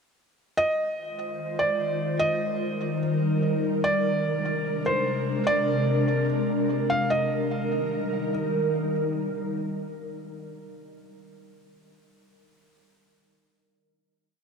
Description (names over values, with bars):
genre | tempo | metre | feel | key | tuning
hip hop | free time | none | none | Eb major | A4 = 440 Hz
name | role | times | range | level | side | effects
felt-muted upright piano | melody | 0.6-8.3 s | C5 to F5 | -27 LUFS | right 1 dB | digital delay
ethereal airy pad | sustained chords | 1.2-10.2 s | C3 to C5 | -26 LUFS | left 1 dB | ensemble chorus, built-in reverb
room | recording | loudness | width
moderate huge ambient reverb, RT60 5.8 s | none | -23 LUFS | side -5 dB against mid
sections
0.6-7.1 verse; 7.1-10.4 final chord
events
none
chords
0.6 Ab6; 2.2 Eb; 3.8 Bb9; 7.1 Eb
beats
free time